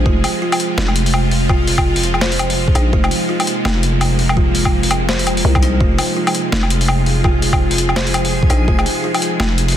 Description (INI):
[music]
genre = half-time drum and bass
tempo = 167 BPM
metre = 4/4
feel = swing 59% on 16ths, half-time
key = F minor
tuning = A4 = 439 Hz
[part]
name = bowed-like drone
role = sustained chords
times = 0.0-9.8 s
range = C3 to Ab4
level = -21 LUFS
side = right 1 dB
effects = built-in reverb, sidechain pumping
[part]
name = kalimba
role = arpeggios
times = 0.0-9.2 s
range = Eb4 to C5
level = -24 LUFS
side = right 1 dB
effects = digital delay
[part]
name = growling 808-style bass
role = bass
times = 0.0-9.8 s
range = F1 to C2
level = -17 LUFS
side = equal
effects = none
[part]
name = electronic kick drum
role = drums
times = 0.1-8.8 s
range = none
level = -16 LUFS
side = equal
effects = overdrive
[part]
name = boom bap sampler-style drum kit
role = drums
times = 0.2-9.8 s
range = hi-hat, snare drum, woodblock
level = -19 LUFS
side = left 1 dB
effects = overdrive
[part]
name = backwards swelling texture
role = texture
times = 6.7-9.8 s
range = Ab4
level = -27 LUFS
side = equal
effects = built-in reverb
[sound]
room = little or no reverb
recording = dense, heavily limited modern master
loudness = -13 LUFS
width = side -10 dB against mid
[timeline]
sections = 0.0-9.8 A section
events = none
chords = 0.0 Fm